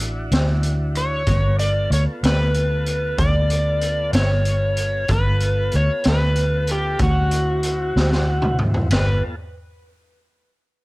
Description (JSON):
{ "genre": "slow blues", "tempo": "63 BPM (dotted quarters)", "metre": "12/8", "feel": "straight", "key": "G mixolydian", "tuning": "A4 = 441 Hz", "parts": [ { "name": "tonewheel organ", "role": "sustained chords", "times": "0.0-9.4 s", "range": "G3 to F5", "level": "-33 LUFS", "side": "equal", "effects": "slow rotary speaker, cassette tape" }, { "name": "vintage muted fingered electric bass", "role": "bass", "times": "0.0-9.2 s", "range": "G1 to D2", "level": "-20 LUFS", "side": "equal", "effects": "none" }, { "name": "raw garage drum kit", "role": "drums", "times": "0.0-9.1 s", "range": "hi-hat, kick drum, ride cymbal, snare drum, toms", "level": "-23 LUFS", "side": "equal", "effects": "cassette tape" }, { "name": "overdriven slide guitar", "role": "melody", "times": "1.0-9.2 s", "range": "F#4 to D5", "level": "-23 LUFS", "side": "equal", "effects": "cassette tape" } ], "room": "little or no reverb", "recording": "home recording on cassette", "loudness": "-17 LUFS", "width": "side -22 dB against mid", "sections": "0.0-8.9 A section; 8.9-10.8 B section", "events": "drum fill 8.0-8.9", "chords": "0.0 Dadd9; 1.3 G9; 7.0 D9; 8.9 G9" }